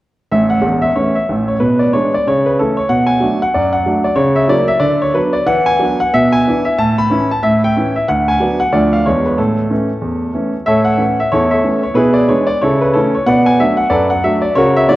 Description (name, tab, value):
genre	jazz, stride piano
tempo	185 BPM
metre	4/4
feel	swing 60% on 8ths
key	A major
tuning	A4 = 438 Hz
part	clear grand piano	solo	0.3-15.0 s	E1 to B5	-11 LUFS	equal	none
room	wet concert hall reverb, RT60 1.8 s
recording	worn, warbling old tape, cassette tape, warbly pitch drift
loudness	-12 LUFS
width	side -16 dB against mid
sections	0.3-10.7 A section; 10.7-15.0 A section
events	none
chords	0.3 A; 1.6 E7/B; 2.3 A/C#; 2.9 Bm7; 4.2 F#7/C#; 4.8 Bm/D; 5.5 E9; 6.1 E7/B; 6.8 A; 8.1 D6; 8.7 Dm; 9.1 E7; 9.4 A; 12.0 E7/B; 12.6 A/C#; 13.3 Bm7